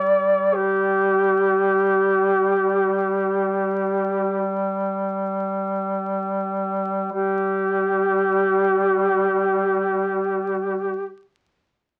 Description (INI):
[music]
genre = caucasian folk, Caucasian lament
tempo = free time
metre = none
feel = none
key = unclear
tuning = A4 = 436 Hz
[part]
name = mellow duduk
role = melody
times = 0.0-11.1 s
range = G4 to D5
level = -22 LUFS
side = equal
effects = none
[part]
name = warm duduk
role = drone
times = 0.0-11.1 s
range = G3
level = -27 LUFS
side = equal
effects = none
[sound]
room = moderate studio ambience, RT60 0.5 s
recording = very old 78 rpm record, vinyl crackle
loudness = -21 LUFS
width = mono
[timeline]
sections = 0.0-7.1 A section; 7.1-11.4 B section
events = slowing down 0.0-7.1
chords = none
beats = free time